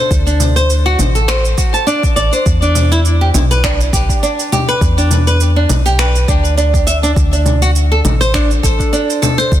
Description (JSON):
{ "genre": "organic downtempo", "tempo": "102 BPM", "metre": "4/4", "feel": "swing 55% on 16ths", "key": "E minor", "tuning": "A4 = 440 Hz", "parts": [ { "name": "flamenco guitar", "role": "arpeggios", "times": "0.0-9.5 s", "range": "D4 to A5", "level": "-15 LUFS", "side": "equal", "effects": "ping-pong delay" }, { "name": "woody FM bass", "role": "bass", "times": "0.1-9.6 s", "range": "A1 to E2", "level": "-13 LUFS", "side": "equal", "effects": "sidechain pumping" }, { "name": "electronic kick drum", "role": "drums", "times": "0.1-9.6 s", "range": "none", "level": "-15 LUFS", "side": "equal", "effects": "overdrive" }, { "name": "electronic shaker, congas and finger snaps", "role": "drums", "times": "0.1-9.6 s", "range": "none", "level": "-19 LUFS", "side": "left 1 dB", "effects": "overdrive" } ], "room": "light reverb", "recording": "dense, heavily limited modern master", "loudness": "-10 LUFS", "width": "side -12 dB against mid", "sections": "0.0-9.6 A section", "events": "none", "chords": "0.0 D7(no3); 2.5 Em7; 7.2 D5" }